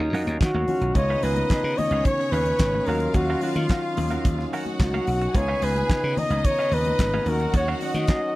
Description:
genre	disco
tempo	109 BPM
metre	4/4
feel	straight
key	unclear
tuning	A4 = 438 Hz
part	breathy flugelhorn	melody	0.0-8.4 s	Eb4 to Eb5	-25 LUFS	equal	none
part	barky tine electric piano	accompaniment	0.0-8.4 s	Db3 to Gb4	-33 LUFS	left 3 dB	overdrive, medium tremolo
part	semi-hollow electric guitar	accompaniment	0.0-8.3 s	Db4 to Ab5	-35 LUFS	right 5 dB	none
part	percussive tonewheel organ	sustained chords	0.0-8.4 s	Eb3 to F5	-33 LUFS	right 1 dB	slow rotary speaker
part	slap bass	bass	0.0-8.0 s	Ab1 to Eb3	-26 LUFS	equal	none
part	damped 70s drum kit	drums	0.1-8.2 s	handclaps, hi-hat, kick drum, snare drum	-23 LUFS	equal	none
part	congas	percussion	0.3-8.2 s	none	-35 LUFS	left 4 dB	none
part	clear studio string section	second line	0.9-8.4 s	Db4 to Ab5	-32 LUFS	left 1 dB	none
room	small room ambience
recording	dry, close 1970s-style studio recording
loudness	-20 LUFS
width	side -17 dB against mid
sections	1.0-8.4 A section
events	none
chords	0.0 Ebm9; 1.0 Db9; 2.9 Ebm9; 5.3 Db9; 7.3 Ebm9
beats	0.41 | 0.95 1.50 2.05 2.60 | 3.15 3.70 4.25 4.80 | 5.35 5.90 6.44 6.99 | 7.54 8.09

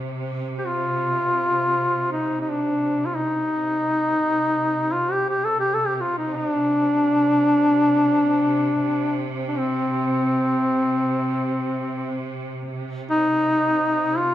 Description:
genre	caucasian folk, Caucasian lament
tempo	free time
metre	none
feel	none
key	C minor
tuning	A4 = 441 Hz
part	clear studio cello section	drone	0.0-14.3 s	C3	-30 LUFS	right 2 dB	none
part	warm duduk	melody	0.6-14.3 s	C4 to A4	-20 LUFS	left 1 dB	none
room	moderate recital hall reverb, RT60 1.7 s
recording	minimal, uncompressed stereo recording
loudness	-19 LUFS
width	side -12 dB against mid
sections	0.0-14.3 A section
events	none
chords	none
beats	free time

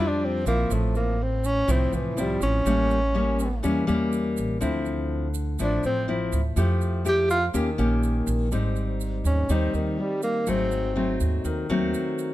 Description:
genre	bossa nova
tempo	123 BPM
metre	4/4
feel	straight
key	F major, Ab major from 8.5 s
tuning	A4 = 441 Hz
part	breathy tenor saxophone	melody	0.0-11.2 s	Eb3 to G4	-26 LUFS	equal	none
part	nylon-string guitar	accompaniment	0.0-12.3 s	Ab2 to G4	-26 LUFS	left 2 dB	none
part	upright bass	bass	0.0-11.9 s	Ab1 to F2	-26 LUFS	right 1 dB	none
part	tube shaker	percussion	0.5-12.3 s	none	-42 LUFS	right 11 dB	none
room	light reverb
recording	dark, warm production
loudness	-22 LUFS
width	side -15 dB against mid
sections	0.0-8.5 A section; 8.5-12.3 A section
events	tenor saxophone solo 0.0-12.3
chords	0.0 Bb6; 0.7 Fmaj7/A; 2.7 A7b9; 4.6 Dm9; 6.6 Fmaj9; 7.5 Eb7; 8.5 Abmaj7; 10.5 Ab7b9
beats	0.22 | 0.71 1.20 1.69 2.18 | 2.67 3.15 3.64 4.13 | 4.62 5.11 5.59 6.08 | 6.57 7.06 7.54 8.03 | 8.52 9.01 9.50 9.98 | 10.47 10.96 11.45 11.94

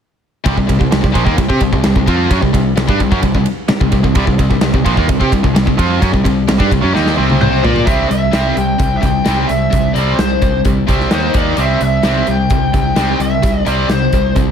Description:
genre	hard rock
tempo	130 BPM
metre	4/4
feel	straight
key	unclear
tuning	A4 = 443 Hz
part	high-gain distorted guitar	riff	0.4-14.5 s	Bb2 to Bb4	-18 LUFS	left 13 dB	distortion
part	distorted electric guitar	riff	0.5-14.5 s	Bb2 to Bb4	-18 LUFS	right 12 dB	overdrive
part	modern bright picked electric bass	bass	0.5-14.5 s	Bb1 to C3	-18 LUFS	equal	none
part	big rock drum kit	drums	0.5-14.5 s	hi-hat, kick drum, ride cymbal, snare drum, toms	-16 LUFS	equal	none
part	bluesy overdriven lead guitar	melody	7.4-14.3 s	C5 to G5	-18 LUFS	left 2 dB	distortion, tape echo
room	small room ambience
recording	none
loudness	-11 LUFS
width	side -8 dB against mid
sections	0.5-7.9 A section; 7.9-14.5 B section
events	drum fill 6.9-7.9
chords	0.5 C5; 7.9 C; 11.1 Eb5; 11.6 C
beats	| 0.46 0.92 1.38 1.85 | 2.31 2.77 3.23 3.70 | 4.16 4.62 5.08 5.55 | 6.01 6.47 6.93 7.40 | 7.86 8.32 8.79 9.25 | 9.72 10.18 10.65 11.11 | 11.57 12.04 12.50 12.97 | 13.43 13.90 14.36

